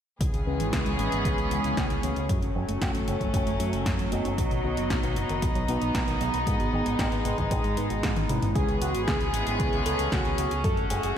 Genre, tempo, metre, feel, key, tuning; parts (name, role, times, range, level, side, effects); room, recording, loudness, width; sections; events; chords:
italo disco; 115 BPM; 4/4; straight; C# minor; A4 = 438 Hz
rich chamber string section; sustained chords; 0.2-11.2 s; E3 to G#4; -30 LUFS; left 1 dB
fingered electric bass with an envelope filter; bass; 0.2-11.1 s; F#1 to G#2; -31 LUFS; equal; tube saturation
electronic kick drum; drums; 0.2-10.7 s; -30 LUFS; equal
house drum kit; drums; 0.2-11.1 s; hi-hat, snare drum, toms; -34 LUFS; equal
analog pluck; arpeggios; 0.3-8.5 s; B2 to C#4; -37 LUFS; right 3 dB; chorus, tape echo
chorused polysynth; stabs; 0.5-8.8 s; G#3 to D#5; -33 LUFS; equal; tape echo
wide unison lead; melody; 8.6-11.1 s; F#4 to A4; -30 LUFS; equal; tape echo
moderate lush hall reverb, RT60 1.8 s; dreamy mix soaked in reverb; -24 LUFS; side -9 dB against mid
0.2-8.6 A section; 8.6-11.2 B section
filter sweep on synth arpeggio sound 0.2-8.6; drum fill 8.0-8.6
0.2 C#m7; 2.3 F#m; 4.4 B; 6.5 G#m; 8.6 C#m7; 10.6 F#m